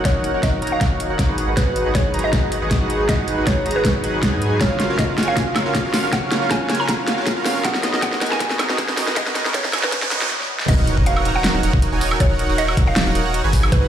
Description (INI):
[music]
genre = future bass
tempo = 158 BPM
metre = 4/4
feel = swing 53% on 16ths, half-time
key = unclear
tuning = A4 = 440 Hz
[part]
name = rich symphonic string section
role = sustained chords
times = 0.0-10.3 s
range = C#3 to E#5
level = -32 LUFS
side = right 1 dB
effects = sidechain pumping, low-pass filter
[part]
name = concert harp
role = arpeggios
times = 0.0-12.6 s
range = D#4 to D#5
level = -31 LUFS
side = left 4 dB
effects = none
[part]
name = big bright polysynth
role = riff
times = 0.0-13.9 s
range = B3 to A#5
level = -23 LUFS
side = right 2 dB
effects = chorus, sidechain pumping, digital delay
[part]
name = saturated sub bass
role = bass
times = 0.0-13.9 s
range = D#1 to G#2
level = -26 LUFS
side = equal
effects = sidechain pumping
[part]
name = mallet-like synth pluck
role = melody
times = 0.1-13.9 s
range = B4 to A#5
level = -26 LUFS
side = right 1 dB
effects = chorus, sidechain pumping, digital delay
[part]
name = big-room dance drum kit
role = drums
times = 0.1-13.8 s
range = crash cymbal, hi-hat, snare drum, woodblock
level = -22 LUFS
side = equal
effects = overdrive
[part]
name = electronic kick drum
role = drums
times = 0.1-13.8 s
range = none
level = -20 LUFS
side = equal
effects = overdrive
[part]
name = riser and impact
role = sound effects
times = 7.0-12.2 s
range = none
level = -27 LUFS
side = equal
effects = none
[sound]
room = light reverb, digital ambience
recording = played on a big sound system in a bare room, large studio reverb, high-pass filter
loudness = -16 LUFS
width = side -10 dB against mid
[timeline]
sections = 0.0-10.7 A section; 10.7-13.9 B section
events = build-up 0.0-10.7; drum fill 0.0-10.3, 10.3-10.7; filter sweep on analog polysynth 0.0-10.7; filter sweep on synth pluck 0.0-10.7; filter sweep on harp 0.0-10.7; filter sweep on string section 0.0-10.7; filter sweep 0.0-10.7; stop 10.3-10.7; drop 10.7-13.9; impact 10.7-12.2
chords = 0.0 D#m7; 1.4 G#m7; 4.6 F#maj7; 7.6 Bmaj7; 10.7 D#m7